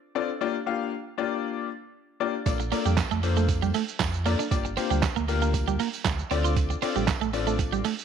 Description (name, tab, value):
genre	dance-pop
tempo	117 BPM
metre	4/4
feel	straight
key	G minor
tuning	A4 = 438 Hz
part	clear concert grand piano	accompaniment	0.2-7.8 s	Bb3 to F5	-29 LUFS	left 9 dB	sidechain pumping
part	sub bass with octave	bass	2.5-7.8 s	G1 to F2	-27 LUFS	right 1 dB	sidechain pumping
part	lo-fi sampler-style drum kit	drums	2.5-8.0 s	handclaps, hi-hat, kick drum, shaker, snare drum	-28 LUFS	right 4 dB	overdrive
part	tambourine	percussion	2.5-8.0 s	none	-48 LUFS	right 15 dB	none
part	twelve-string electric guitar	riff	2.6-7.9 s	G3 to F4	-30 LUFS	right 13 dB	wide subtle chorus
room	light reverb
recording	1960s-style stereo with parts hard left and right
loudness	-24 LUFS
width	side -7 dB against mid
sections	0.0-8.0 A section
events	none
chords	0.4 Gm7; 2.5 Bbmaj7; 4.5 Gm7; 6.3 Dm7